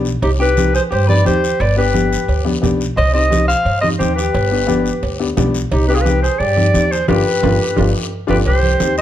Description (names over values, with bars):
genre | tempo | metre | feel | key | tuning
latin, cumbia | 175 BPM | 4/4 | straight | C harmonic minor | A4 = 440 Hz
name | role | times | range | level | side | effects
dark upright piano | accompaniment | 0.0-9.0 s | B3 to G4 | -21 LUFS | left 6 dB | none
upright bass | bass | 0.0-9.0 s | G1 to G2 | -18 LUFS | equal | none
guiro | percussion | 0.1-9.0 s | none | -30 LUFS | left 6 dB | none
warm clarinet | melody | 0.2-9.0 s | G4 to F5 | -18 LUFS | right 1 dB | plate reverb
electric guitar at the edge of break-up | second line | 0.2-9.0 s | Eb4 to C5 | -23 LUFS | left 4 dB | none
cowbell and timbales | percussion | 0.2-8.6 s | none | -28 LUFS | right 8 dB | none
congas | percussion | 0.6-9.0 s | none | -22 LUFS | right 3 dB | none
room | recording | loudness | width
light reverb | dark, warm production | -13 LUFS | side -11 dB against mid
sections
0.0-8.5 A section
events
band accent 7.1-8.5; drum fill 7.9-8.5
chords
0.2 Cm; 1.6 G; 3.0 Cm; 4.3 G; 5.7 Cm; 7.1 G7; 8.5 Cm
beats
| 0.23 0.58 0.92 1.26 | 1.61 1.95 2.29 2.63 | 2.98 3.32 3.66 4.00 | 4.35 4.69 5.03 5.38 | 5.72 6.06 6.40 6.75 | 7.09 7.43 7.78 8.12 | 8.46 8.80